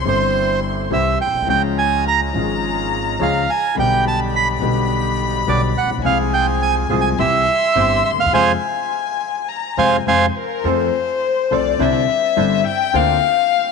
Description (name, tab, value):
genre	tango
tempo	105 BPM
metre	4/4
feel	rubato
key	F harmonic minor, F major from 10.6 s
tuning	A4 = 440 Hz
part	warm violin	second line	0.0-13.7 s	Bb4 to C6	-21 LUFS	left 10 dB	tape echo
part	clear concert grand piano	accompaniment	0.0-13.2 s	G1 to A4	-23 LUFS	left 11 dB	none
part	bandoneon	stabs	0.0-13.2 s	G3 to C5	-27 LUFS	right 13 dB	none
part	upright bass	bass	0.0-13.2 s	G1 to F2	-23 LUFS	right 2 dB	none
part	bandoneon	melody	0.1-10.3 s	C5 to B5	-18 LUFS	right 4 dB	none
room	moderate plate reverb, RT60 3.3 s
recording	1960s-style stereo with parts hard left and right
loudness	-15 LUFS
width	side -5 dB against mid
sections	0.0-10.6 A section; 10.6-13.7 B section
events	band accent 8.3-10.6; violin solo 10.6-13.7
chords	0.0 C; 1.5 Db; 3.8 G/B; 6.0 Fm/C; 7.2 C; 8.3 Fm; 10.6 F; 11.8 Cadd9; 12.9 Bbadd9/D